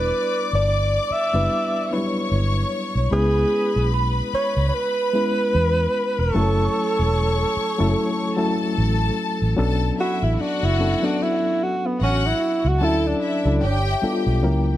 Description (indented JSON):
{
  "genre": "soul",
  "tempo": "74 BPM",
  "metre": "4/4",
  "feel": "swing 58% on 16ths",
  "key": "B minor",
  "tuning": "A4 = 440 Hz",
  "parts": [
    { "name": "mellow alto saxophone", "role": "melody", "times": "0.0-13.9 s", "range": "B3 to E5", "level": "-23 LUFS", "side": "right 1 dB", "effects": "slapback echo" },
    { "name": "rich studio string section", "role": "second line", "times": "0.0-14.8 s", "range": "E4 to D6", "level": "-27 LUFS", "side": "left 4 dB", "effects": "slapback echo" },
    { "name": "reed electric piano", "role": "accompaniment", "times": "0.0-14.8 s", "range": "F#3 to B4", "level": "-25 LUFS", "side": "left 2 dB", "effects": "medium tremolo" },
    { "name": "vintage muted fingered electric bass", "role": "bass", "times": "0.0-14.8 s", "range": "E1 to E2", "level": "-21 LUFS", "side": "equal", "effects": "none" },
    { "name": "celesta", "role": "texture", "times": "3.9-14.8 s", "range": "F4 to C#6", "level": "-33 LUFS", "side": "right 1 dB", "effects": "none" }
  ],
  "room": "studio reverb",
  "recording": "none",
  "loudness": "-18 LUFS",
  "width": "side -13 dB against mid",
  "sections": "0.0-9.6 A section; 9.6-14.8 B section",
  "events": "alto saxophone solo 9.6-14.8",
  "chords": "0.0 Em7; 3.1 C#m7; 6.4 F#m7; 9.6 Bm9; 12.8 Dmaj9; 13.6 G9"
}